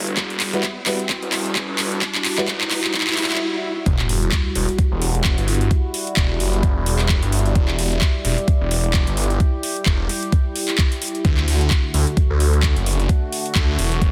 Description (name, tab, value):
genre	bass house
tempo	130 BPM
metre	4/4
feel	swing 57% on 16ths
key	E minor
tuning	A4 = 441 Hz
part	sweeping resonant pad	sustained chords	0.0-14.1 s	D3 to G4	-29 LUFS	equal	chorus, phaser, vintage 12-bit sampler grit, sidechain pumping
part	phased detuned saw bass	bass	0.0-14.1 s	E1 to D2	-23 LUFS	equal	phaser, tube saturation, sidechain pumping, high-pass filter
part	riser, swell and sub drop	sound effects	0.0-5.7 s	none	-32 LUFS	equal	none
part	garage drum kit	drums	0.1-14.1 s	handclaps, hi-hat	-26 LUFS	equal	overdrive
part	electronic kick drum	drums	0.2-14.1 s	none	-21 LUFS	equal	overdrive, high-pass filter on kick
part	warm concert grand piano	stabs	0.5-2.4 s	G3 to B4	-29 LUFS	equal	sidechain pumping, tape echo
room	light reverb, digital ambience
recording	dense, heavily limited modern master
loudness	-20 LUFS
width	mono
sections	0.0-3.9 A section; 3.9-14.1 B section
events	build-up 0.0-3.9; drum fill 0.0-3.4; riser 0.0-3.4; filter sweep on grand piano 0.0-3.9; swell 2.9-3.9; break 3.4-3.9; drop 3.9-14.1; impact 3.9-5.7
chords	0.0 Emadd9; 11.2 D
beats	| 0.17 0.63 1.09 1.55 | 2.02 2.48 2.94 3.40 | 3.86 4.32 4.79 5.25 | 5.71 6.17 6.63 7.09 | 7.55 8.02 8.48 8.94 | 9.40 9.86 10.32 10.79 | 11.25 11.71 12.17 12.63 | 13.09 13.55 14.02